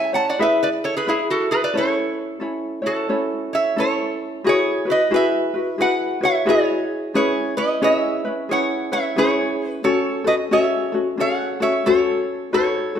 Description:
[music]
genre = Hawaiian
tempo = 89 BPM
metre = 4/4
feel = swing 62% on 8ths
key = A major, E major from 4.4 s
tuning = A4 = 440 Hz
[part]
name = lap resonator guitar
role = melody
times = 0.0-13.0 s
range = E4 to A5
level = -20 LUFS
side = right 2 dB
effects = slapback echo
[part]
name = ukulele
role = accompaniment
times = 0.0-13.0 s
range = C#4 to E5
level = -21 LUFS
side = left 2 dB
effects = none
[sound]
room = wet recital hall reverb, RT60 1.4 s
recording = none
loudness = -18 LUFS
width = side -8 dB against mid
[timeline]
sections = 0.0-4.4 A section; 4.4-13.0 B section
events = none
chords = 0.4 E; 1.7 A; 4.4 Eadd9; 7.1 C#m7; 9.8 F#madd9

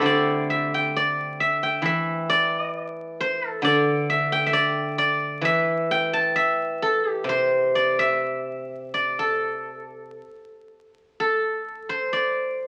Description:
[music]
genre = chinese traditional, Chinese solo plucked strings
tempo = 58-67 BPM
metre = 4/4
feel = rubato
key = A yu mode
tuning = A4 = 440 Hz
[part]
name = steel-string zither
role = solo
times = 0.0-12.7 s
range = C3 to A5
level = -23 LUFS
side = equal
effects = none
[sound]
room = moderate large studio reverb, RT60 1.1 s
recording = very old 78 rpm record, vinyl crackle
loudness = -23 LUFS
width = mono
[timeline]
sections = 0.0-11.2 A section; 11.2-12.7 B section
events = none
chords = none

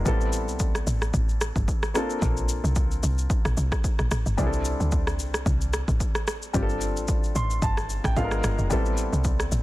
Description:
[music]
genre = amapiano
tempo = 111 BPM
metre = 4/4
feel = swing 55% on 16ths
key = C major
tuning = A4 = 440 Hz
[part]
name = dark baby grand piano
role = accompaniment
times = 0.0-9.6 s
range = G3 to C6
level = -30 LUFS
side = left 1 dB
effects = none
[part]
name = woody log drum bass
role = bass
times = 0.0-9.6 s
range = E#1 to D2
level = -26 LUFS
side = equal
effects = none
[part]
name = deep house drum kit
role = drums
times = 0.1-9.6 s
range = kick drum, rim click, shaker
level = -26 LUFS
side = equal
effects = vintage 12-bit sampler grit
[sound]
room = little or no reverb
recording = dense, heavily limited modern master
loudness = -22 LUFS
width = side -17 dB against mid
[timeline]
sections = 0.0-9.6 A section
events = grand piano fill 7.1-8.7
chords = 0.1 Am9; 1.9 Bbmaj7; 4.4 C6; 6.5 G9sus4; 8.2 G#dim7; 8.7 Am9

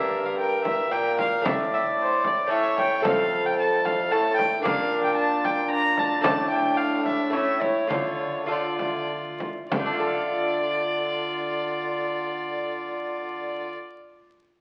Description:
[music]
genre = classical, renaissance-style consort dance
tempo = 97-113 BPM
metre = 3/4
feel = straight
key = D minor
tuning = A4 = 440 Hz
[part]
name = dark violin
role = melody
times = 0.0-13.7 s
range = C5 to Bb5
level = -29 LUFS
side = equal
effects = none
[part]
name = warm viola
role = second line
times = 0.0-13.7 s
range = C#4 to D5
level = -31 LUFS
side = equal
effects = none
[part]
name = lute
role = accompaniment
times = 0.0-14.1 s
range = F2 to F5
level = -32 LUFS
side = equal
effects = none
[part]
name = warm bassoon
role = bass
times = 0.0-13.7 s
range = F2 to D3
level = -34 LUFS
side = equal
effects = none
[part]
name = frame drum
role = percussion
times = 0.7-10.0 s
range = none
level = -34 LUFS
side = equal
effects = none
[sound]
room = wet large studio reverb, RT60 1.3 s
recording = very old 78 rpm record, vinyl crackle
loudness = -25 LUFS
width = mono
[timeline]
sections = 0.0-9.7 A section; 9.7-13.4 B section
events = slowing down 5.4-9.7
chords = 0.0 Gm; 1.4 Asus4; 2.5 A; 3.0 F; 4.6 Bb; 6.2 Asus4; 7.3 A; 7.9 Dm

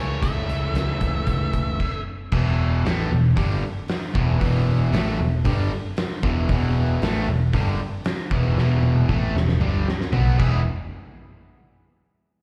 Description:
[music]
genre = blues rock power trio and southern rock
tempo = 115 BPM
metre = 4/4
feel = straight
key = unclear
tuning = A4 = 440 Hz
[part]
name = octave-fuzz lead guitar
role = melody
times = 0.0-2.0 s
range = C#5 to E5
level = -34 LUFS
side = equal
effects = distortion, slapback echo
[part]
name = biting lead guitar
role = second line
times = 0.0-2.0 s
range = A4 to A#4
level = -41 LUFS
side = equal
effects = overdrive, slapback echo
[part]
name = crunchy overdriven guitar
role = riff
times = 0.0-10.6 s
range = E2 to G#4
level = -28 LUFS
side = equal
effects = slapback echo
[part]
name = vintage muted picked electric bass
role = bass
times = 0.0-10.6 s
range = E1 to C#2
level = -24 LUFS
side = equal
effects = none
[part]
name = oversized low-tuned drum kit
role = drums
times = 0.2-10.5 s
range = crash cymbal, hi-hat, kick drum, snare drum, toms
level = -28 LUFS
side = equal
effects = none
[sound]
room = light reverb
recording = live gig heard through the venue's PA, club reverb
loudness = -22 LUFS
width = mono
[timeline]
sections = 0.0-2.3 A section; 2.3-10.7 B section; 10.7-12.4 C section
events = stop 1.8-2.3; drum fill 8.6-10.7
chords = 0.0 A/C#; 2.3 E5; 10.1 B5; 10.4 E; 10.7 N.C.

